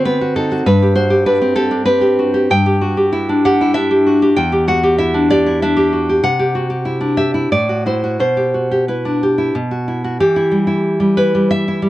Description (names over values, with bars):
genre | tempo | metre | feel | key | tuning
romantic piece for solo classical guitar | 86-103 BPM | 3/4 | rubato | E minor | A4 = 440 Hz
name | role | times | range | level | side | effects
nylon-string guitar | solo | 0.0-11.9 s | E2 to G5 | -13 LUFS | equal | none
room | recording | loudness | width
little or no reverb | dry, close 1970s-style studio recording | -13 LUFS | side -15 dB against mid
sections
0.0-10.2 A section; 10.2-11.9 B section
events
none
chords
0.0 D7b9; 0.7 G; 2.5 Em/G; 4.3 Em; 6.2 C; 7.5 F#m7b5/A; 8.2 Em/B; 9.5 B5; 10.2 Em